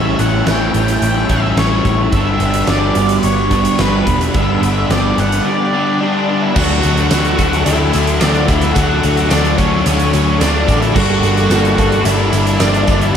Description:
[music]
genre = rock, shoegaze and dream pop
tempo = 109 BPM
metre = 4/4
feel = straight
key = D major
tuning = A4 = 440 Hz
[part]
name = octave-fuzz lead guitar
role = melody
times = 0.0-13.2 s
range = C#4 to G5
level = -19 LUFS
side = equal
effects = distortion, analog delay
[part]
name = soft additive organ-like pad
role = sustained chords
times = 0.0-13.2 s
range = D4 to D6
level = -25 LUFS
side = right 1 dB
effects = ensemble chorus, built-in reverb
[part]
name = direct-recorded clean electric guitar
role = riff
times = 0.0-6.6, 11.0-13.2 s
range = G2 to A4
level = -21 LUFS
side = right 7 dB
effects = reverse reverb
[part]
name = distorted electric guitar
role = riff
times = 0.0-13.2 s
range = G2 to E4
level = -20 LUFS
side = right 1 dB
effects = distortion
[part]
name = raw garage guitar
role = riff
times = 0.0-13.2 s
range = G2 to E4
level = -19 LUFS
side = left 6 dB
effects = overdrive, lush chorus
[part]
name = vintage muted picked electric bass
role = bass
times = 0.0-13.1 s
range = E1 to D2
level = -18 LUFS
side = equal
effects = none
[part]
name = huge arena drum kit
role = drums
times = 0.2-13.1 s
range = crash cymbal, hi-hat, kick drum, snare drum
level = -19 LUFS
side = equal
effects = none
[part]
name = tambourine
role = percussion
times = 6.6-13.0 s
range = none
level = -33 LUFS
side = right 15 dB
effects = none
[sound]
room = moderate lush hall reverb, RT60 1.7 s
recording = dreamy mix soaked in reverb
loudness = -11 LUFS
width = side -8 dB against mid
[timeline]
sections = 0.0-6.6 A section; 6.6-13.2 B section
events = none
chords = 0.0 A7; 2.1 Gmaj7; 6.6 D; 11.0 Gmadd9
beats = 0.47 1.02 1.58 | 2.13 2.69 3.24 3.80 | 4.35 4.91 5.46 6.01 | 6.56 7.12 7.67 8.22 | 8.77 9.32 9.87 10.42 | 10.97 11.52 12.06 12.62 | 13.16

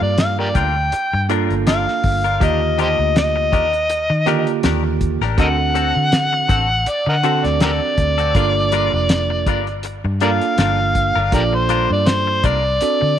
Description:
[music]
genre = straight-eighth soul blues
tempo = 81 BPM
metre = 4/4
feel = swing 55% on 16ths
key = G minor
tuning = A4 = 440 Hz
[part]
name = overdriven harmonica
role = melody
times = 0.0-13.2 s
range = G4 to G5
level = -18 LUFS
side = left 1 dB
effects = none
[part]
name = bell-like tine electric piano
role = accompaniment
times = 0.0-13.1 s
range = D3 to A4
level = -23 LUFS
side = right 14 dB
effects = none
[part]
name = direct-recorded clean electric guitar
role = stabs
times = 0.0-13.1 s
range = D3 to Bb4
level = -25 LUFS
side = left 11 dB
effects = wide subtle chorus
[part]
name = vintage muted fingered electric bass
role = bass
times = 0.0-13.2 s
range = F1 to Eb3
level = -21 LUFS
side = left 1 dB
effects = none
[part]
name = cloth-damped thuddy drum kit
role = drums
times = 0.2-13.0 s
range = hi-hat, kick drum, snare drum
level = -20 LUFS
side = left 1 dB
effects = none
[sound]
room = light reverb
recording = 1960s-style stereo with parts hard left and right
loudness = -15 LUFS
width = side -10 dB against mid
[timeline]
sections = 0.0-13.2 A section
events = harmonica solo 0.0-13.2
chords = 0.0 Gm7; 2.4 Ebmaj7; 5.4 D7; 8.4 Gm7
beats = 0.18 0.93 1.67 | 2.41 3.15 3.90 4.64 | 5.38 6.13 6.87 7.61 | 8.36 9.10 9.84 10.59 | 11.33 12.07 12.81

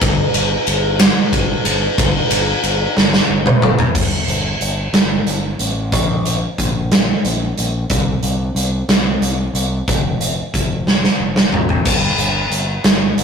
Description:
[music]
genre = quiet-loud alternative rock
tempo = 61 BPM (dotted quarters)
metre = 6/8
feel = straight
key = unclear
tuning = A4 = 436 Hz
[part]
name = growling fingered electric bass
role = bass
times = 0.0-13.2 s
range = F1 to C2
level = -21 LUFS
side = equal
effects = overdrive
[part]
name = big rock drum kit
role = drums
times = 0.0-13.2 s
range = crash cymbal, hi-hat, kick drum, ride cymbal, snare drum, toms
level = -15 LUFS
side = equal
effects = none
[sound]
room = light reverb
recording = rough rehearsal-room recording, tube saturation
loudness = -14 LUFS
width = side -6 dB against mid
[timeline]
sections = 0.0-4.0 A section; 4.0-13.2 B section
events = drum fill 3.0-4.0, 10.9-11.9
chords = none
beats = | 0.02 1.00 | 1.98 2.97 | 3.95 4.94 | 5.93 6.92 | 7.91 8.89 | 9.88 10.87 | 11.86 12.84

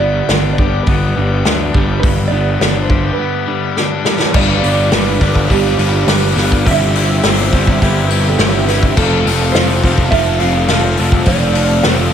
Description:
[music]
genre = indie rock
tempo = 104 BPM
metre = 4/4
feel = straight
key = unclear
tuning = A4 = 440 Hz
[part]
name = mellow electric guitar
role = melody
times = 0.0-12.1 s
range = G4 to F5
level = -20 LUFS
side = right 5 dB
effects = wide subtle chorus
[part]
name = tonewheel organ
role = sustained chords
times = 0.0-12.1 s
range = F3 to E5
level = -28 LUFS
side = equal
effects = none
[part]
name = crunchy overdriven guitar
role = riff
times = 0.0-12.1 s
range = G2 to B4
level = -19 LUFS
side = left 10 dB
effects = none
[part]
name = crunchy overdriven guitar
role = riff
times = 0.0-12.1 s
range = G2 to F5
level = -21 LUFS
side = right 5 dB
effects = ensemble chorus, digital delay
[part]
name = fuzz picked electric bass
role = bass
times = 0.0-12.1 s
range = F1 to D2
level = -15 LUFS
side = equal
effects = overdrive
[part]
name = unplugged drum kit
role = drums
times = 0.3-12.0 s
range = crash cymbal, hi-hat, kick drum, snare drum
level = -16 LUFS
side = equal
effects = none
[sound]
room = little or no reverb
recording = none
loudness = -11 LUFS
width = side -9 dB against mid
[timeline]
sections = 0.0-4.3 A section; 4.3-12.1 B section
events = break 3.2-4.3; drum fill 3.8-4.3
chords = 0.0 G; 4.3 G7; 6.7 C/G; 9.0 F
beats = 0.29 0.87 1.45 | 2.03 2.61 3.19 3.77 | 4.34 4.92 5.50 6.08 | 6.65 7.23 7.81 8.38 | 8.96 9.54 10.11 10.69 | 11.27 11.84

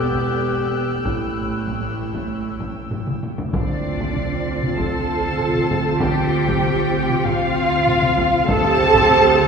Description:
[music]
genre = cinematic, suspense film score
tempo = 97 BPM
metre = 4/4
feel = straight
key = D phrygian from 3.5 s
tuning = A4 = 441 Hz
[part]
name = muted symphonic violin section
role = melody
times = 0.0-9.5 s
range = D5 to A5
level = -27 LUFS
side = left 2 dB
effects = none
[part]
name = muted symphonic violin section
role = second line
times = 0.0-9.5 s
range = C#5 to A5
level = -25 LUFS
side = right 3 dB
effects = none
[part]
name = warm clarinet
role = second line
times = 0.0-3.2 s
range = E4 to G4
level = -28 LUFS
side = left 2 dB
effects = none
[part]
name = muted symphonic viola section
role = accompaniment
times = 0.0-9.5 s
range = A3 to G4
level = -23 LUFS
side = right 2 dB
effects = none
[part]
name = muted symphonic cello section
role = bass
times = 0.0-9.5 s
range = E2 to A4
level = -23 LUFS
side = right 1 dB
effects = none
[part]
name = muted symphonic double bass section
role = bass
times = 0.0-9.5 s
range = E1 to D2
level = -26 LUFS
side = right 2 dB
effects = none
[part]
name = muted symphonic violin section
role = texture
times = 0.0-9.5 s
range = Eb6 to C7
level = -32 LUFS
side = left 4 dB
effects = none
[part]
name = taiko ensemble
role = drums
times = 0.1-9.5 s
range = none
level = -26 LUFS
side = left 1 dB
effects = none
[part]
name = timpani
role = percussion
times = 3.5-4.4, 8.5-9.4 s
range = D3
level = -31 LUFS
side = equal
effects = none
[sound]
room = wet cathedral reverb, RT60 4.8 s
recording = recorded in a church or concert hall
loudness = -17 LUFS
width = side -6 dB against mid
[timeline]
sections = 0.0-3.5 A section; 3.5-9.5 B section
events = drum fill 2.9-3.5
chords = 0.0 Em7; 1.1 A7; 3.5 Dm7; 8.5 Cm/D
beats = 0.45 | 1.06 1.68 2.30 2.92 | 3.54 4.16 4.78 5.39 | 6.01 6.63 7.25 7.87 | 8.49 9.10

